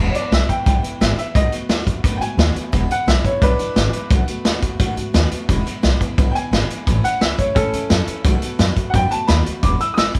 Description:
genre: rockabilly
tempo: 174 BPM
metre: 4/4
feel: straight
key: E major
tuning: A4 = 440 Hz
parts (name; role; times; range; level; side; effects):
- picked steel-string acoustic guitar; accompaniment; 0.0-10.2 s; E2 to F#4; -30 LUFS; equal; none
- upright bass; bass; 0.0-10.2 s; E1 to G#2; -22 LUFS; equal; none
- clear upright piano; melody; 0.1-10.2 s; C#4 to E6; -24 LUFS; equal; none
- vintage drum kit; drums; 0.1-10.2 s; hi-hat, kick drum, snare drum; -21 LUFS; equal; none
room: moderate studio reverb, RT60 0.7 s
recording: band playing live in one room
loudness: -18 LUFS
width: mono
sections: 0.0-10.2 A section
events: none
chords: 0.0 E; 1.4 B7; 2.7 E; 4.1 B7; 5.5 E; 6.9 A; 8.2 B7; 9.6 E

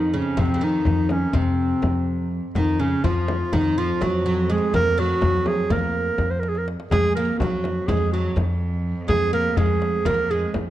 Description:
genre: Turkish makam ensemble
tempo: 248 BPM (eighths)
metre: 9/8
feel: straight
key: F makam kurdi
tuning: A4 = 440 Hz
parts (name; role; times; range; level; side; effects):
- warm clarinet; melody; 0.0-10.5 s; C4 to C5; -23 LUFS; right 1 dB; none
- oud; second line; 0.0-10.5 s; C3 to Bb3; -28 LUFS; right 3 dB; slapback echo
- upright bass; bass; 0.0-10.7 s; F2; -26 LUFS; equal; none
- rich cello; drone; 0.0-10.7 s; F2; -33 LUFS; right 2 dB; none
- darbuka; percussion; 0.4-10.7 s; none; -27 LUFS; left 3 dB; none
- frame drum; percussion; 0.4-10.7 s; none; -29 LUFS; left 2 dB; none
room: light reverb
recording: dark, warm production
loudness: -19 LUFS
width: side -13 dB against mid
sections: 0.0-10.7 A section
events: drum fill 6.4-6.9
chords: none

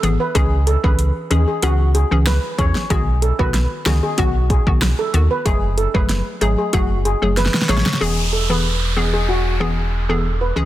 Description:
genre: dancehall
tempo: 94 BPM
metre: 4/4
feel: straight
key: unclear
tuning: A4 = 439 Hz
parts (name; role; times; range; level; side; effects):
- hollow square pluck; accompaniment; 0.0-10.7 s; D#3 to G#4; -23 LUFS; left 2 dB; chorus
- sub bass with octave; bass; 0.0-10.7 s; E1 to E2; -18 LUFS; equal; none
- deep house drum kit; drums; 0.0-8.1 s; hi-hat, kick drum, rim click, snare drum; -20 LUFS; equal; none
- steel pan; melody; 0.2-10.7 s; F#4 to C#5; -23 LUFS; equal; digital delay
- downlifter; sound effects; 8.0-10.7 s; none; -24 LUFS; right 1 dB; none
room: little or no reverb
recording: dense, heavily limited modern master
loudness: -15 LUFS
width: side -14 dB against mid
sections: 0.0-8.0 A section; 8.0-10.7 B section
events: drum fill 7.4-8.0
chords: 0.3 C#m; 2.9 B; 5.5 F#madd9; 8.0 E

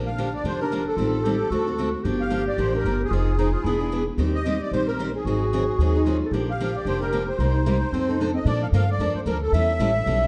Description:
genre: acoustic string swing (jazz manouche)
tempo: 224 BPM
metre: 4/4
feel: swing 56% on 8ths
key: Bb major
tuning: A4 = 440 Hz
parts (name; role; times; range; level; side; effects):
- growling clarinet; second line; 0.0-8.4 s; C4 to A4; -32 LUFS; equal; none
- picked steel-string acoustic guitar; accompaniment; 0.0-10.3 s; C3 to C5; -29 LUFS; equal; none
- upright bass; bass; 0.0-10.3 s; E1 to Bb2; -27 LUFS; equal; none
- musette accordion; melody; 0.1-10.3 s; Ab4 to F5; -30 LUFS; equal; none
room: wet recital hall reverb, RT60 1.3 s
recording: dark, warm production, nothing above 10.8 kHz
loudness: -23 LUFS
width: mono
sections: 0.0-8.5 A section; 8.5-10.3 B section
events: none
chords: 0.0 Bb6; 1.0 Am7b5; 1.5 D7; 2.0 Gm7; 3.1 Fm7; 3.6 E7; 4.2 Eb6; 5.2 Ab7; 6.3 Bb6; 7.4 Cm7; 7.9 F7; 8.5 Bbmaj7; 9.5 A7

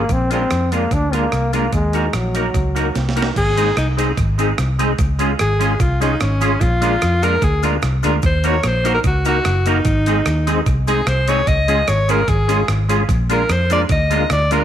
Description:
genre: ska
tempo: 148 BPM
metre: 4/4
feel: straight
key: Db major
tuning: A4 = 440 Hz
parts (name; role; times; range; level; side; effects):
- clear trombone; melody; 0.0-3.0 s; Gb3 to D4; -21 LUFS; left 1 dB; none
- percussive tonewheel organ; stabs; 0.0-14.6 s; Ab3 to Bb4; -24 LUFS; left 11 dB; chorus vibrato, fast rotary speaker
- vintage muted fingered electric bass; bass; 0.0-14.6 s; Gb1 to F2; -19 LUFS; equal; none
- breakbeat sampler-style drum kit; drums; 0.1-14.6 s; crash cymbal, hi-hat, kick drum, rim click, snare drum; -23 LUFS; right 1 dB; tape echo
- cabasa; percussion; 0.1-14.6 s; none; -41 LUFS; left 12 dB; none
- semi-hollow electric guitar; accompaniment; 0.3-14.6 s; Ab3 to Bb4; -23 LUFS; right 10 dB; warbly pitch drift, tape echo
- edgy alto saxophone; melody; 3.4-14.6 s; Db4 to Eb5; -19 LUFS; equal; none
room: light reverb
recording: 1960s-style stereo with parts hard left and right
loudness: -14 LUFS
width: side -10 dB against mid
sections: 0.0-3.4 A section; 3.4-14.6 B section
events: drum fill 3.0-3.4; alto saxophone solo 3.4-14.6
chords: 0.1 Bb7; 1.7 Ebm; 3.4 Ab; 5.0 Db; 6.6 Bb7; 8.2 Ebm; 9.9 Ab; 11.5 Db; 13.1 Bb7

